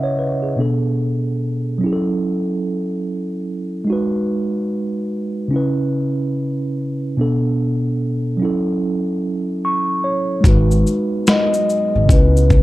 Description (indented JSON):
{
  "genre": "lo-fi hip hop",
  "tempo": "73 BPM",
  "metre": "4/4",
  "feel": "swing 64% on 16ths",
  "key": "G# phrygian",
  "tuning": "A4 = 438 Hz",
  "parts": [
    { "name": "mellow tine electric piano", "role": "accompaniment", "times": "0.0-12.6 s", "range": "B2 to C#6", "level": "-18 LUFS", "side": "right 1 dB", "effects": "slow stereo tremolo" },
    { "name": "deep dark ambient pad", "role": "sustained chords", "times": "11.1-12.6 s", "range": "C#3 to D#5", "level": "-29 LUFS", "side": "equal", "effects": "chorus, built-in reverb" },
    { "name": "upright bass", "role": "bass", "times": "10.4-12.6 s", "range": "G#1 to C#2", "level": "-15 LUFS", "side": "equal", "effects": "none" },
    { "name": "dusty soul sampler-style drum kit", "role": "drums", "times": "10.4-12.6 s", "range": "hi-hat, kick drum, shaker, snare drum", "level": "-14 LUFS", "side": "left 1 dB", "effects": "none" },
    { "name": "vibraphone with soft mallets", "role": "melody", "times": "11.3-12.6 s", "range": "B4 to D#5", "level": "-18 LUFS", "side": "left 2 dB", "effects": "none" }
  ],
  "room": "light reverb, digital ambience",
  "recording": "dark, warm production",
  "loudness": "-16 LUFS",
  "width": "side -17 dB against mid",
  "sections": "0.0-10.4 A section; 10.4-12.6 B section",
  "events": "none",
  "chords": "0.0 C#m7; 0.6 Bm7; 1.8 F#m7; 3.9 G#m7; 5.5 C#m7; 7.2 Bm7; 8.4 F#m7; 10.4 G#m7; 12.1 C#m7"
}